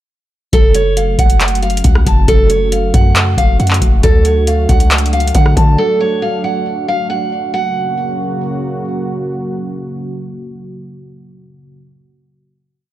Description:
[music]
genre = hip hop, trap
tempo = 137 BPM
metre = 4/4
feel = half-time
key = F# harmonic minor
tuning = A4 = 442 Hz
[part]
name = picked steel-string acoustic guitar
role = melody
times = 0.5-8.8 s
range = A4 to A5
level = -16 LUFS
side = right 2 dB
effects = low-pass filter, digital delay
[part]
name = dark analog pad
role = sustained chords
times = 0.5-11.8 s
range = C#3 to F#4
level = -22 LUFS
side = right 1 dB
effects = chorus
[part]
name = warm 808-style bass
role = bass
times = 0.5-5.8 s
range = F#1 to D3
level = -14 LUFS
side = equal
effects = none
[part]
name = booming analog drum machine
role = drums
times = 0.5-5.8 s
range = handclaps, hi-hat, kick drum, rim click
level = -11 LUFS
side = equal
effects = none
[sound]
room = little or no reverb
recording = none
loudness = -11 LUFS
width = side -14 dB against mid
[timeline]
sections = 0.5-7.5 hook; 7.5-11.0 final chord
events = none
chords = 0.5 F#m; 4.0 D; 7.5 F#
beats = | 0.53 0.97 1.41 1.84 | 2.28 2.72 3.16 3.60 | 4.03 4.47 4.91 5.35 | 5.79 6.22 6.66 7.10 | 7.54 7.97 8.41 8.85 | 9.29 9.73 10.16 10.60

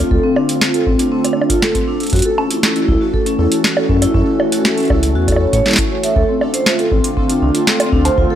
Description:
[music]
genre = IDM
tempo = 119 BPM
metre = 4/4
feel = straight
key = unclear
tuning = A4 = 441 Hz
[part]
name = warbly tape-like pad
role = sustained chords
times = 0.0-8.4 s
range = D3 to F#4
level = -20 LUFS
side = right 1 dB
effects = chorus, built-in reverb, phaser, vintage 12-bit sampler grit
[part]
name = vibraphone with medium mallets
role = arpeggios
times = 0.0-8.4 s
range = C4 to E5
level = -17 LUFS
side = left 1 dB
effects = analog delay
[part]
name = round analog bass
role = bass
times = 0.0-8.3 s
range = A1 to A2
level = -16 LUFS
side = equal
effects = none
[part]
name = pulsing gated texture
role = texture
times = 0.0-8.4 s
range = A4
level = -28 LUFS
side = right 2 dB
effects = chorus, built-in reverb
[part]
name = electronic kick drum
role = drums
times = 0.1-8.3 s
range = none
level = -19 LUFS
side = equal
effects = none
[part]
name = booming analog drum machine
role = drums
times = 0.4-8.2 s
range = bongos, hi-hat, snare drum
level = -18 LUFS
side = right 1 dB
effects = none
[sound]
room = light reverb, digital ambience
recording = dry, gritty hardware recording, transformer saturation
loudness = -12 LUFS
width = side -10 dB against mid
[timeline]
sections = 0.0-8.4 A section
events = none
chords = 0.0 Dm7; 2.1 F#m7; 6.2 Dm7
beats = | 0.11 0.61 1.12 1.62 | 2.13 2.63 3.14 3.64 | 4.14 4.65 5.15 5.66 | 6.16 6.67 7.17 7.67 | 8.18

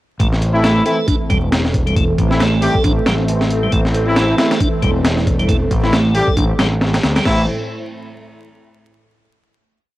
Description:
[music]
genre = breakbeat, breaks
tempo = 136 BPM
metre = 4/4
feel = swing 57% on 16ths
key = A minor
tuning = A4 = 439 Hz
[part]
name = phased analog pad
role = sustained chords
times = 0.2-7.5 s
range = A2 to E4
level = -21 LUFS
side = right 1 dB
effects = phaser, chorus, vintage 12-bit sampler grit, sidechain pumping, cassette tape
[part]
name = tonewheel organ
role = riff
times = 0.2-7.5 s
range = G3 to A4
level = -22 LUFS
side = right 1 dB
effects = slow rotary speaker, vintage 12-bit sampler grit, cassette tape, analog delay
[part]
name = growling fingered electric bass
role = bass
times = 0.2-7.5 s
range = E1 to D2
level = -19 LUFS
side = equal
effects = overdrive
[part]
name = breakbeat sampler-style drum kit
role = drums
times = 0.2-7.4 s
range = crash cymbal, hi-hat, kick drum, snare drum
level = -18 LUFS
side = equal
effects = studio reverb
[part]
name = warm horn section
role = stabs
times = 0.5-7.4 s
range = E3 to G4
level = -19 LUFS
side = left 1 dB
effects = cassette tape, analog delay
[sound]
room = light reverb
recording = home recording on cassette, vinyl crackle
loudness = -13 LUFS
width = side -16 dB against mid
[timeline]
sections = 0.2-7.3 groove; 7.3-9.0 final chord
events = none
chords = 0.2 Am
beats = | 0.20 0.64 1.08 1.52 | 1.96 2.40 2.84 3.28 | 3.73 4.17 4.61 5.05 | 5.49 5.93 6.37 6.81 | 7.25

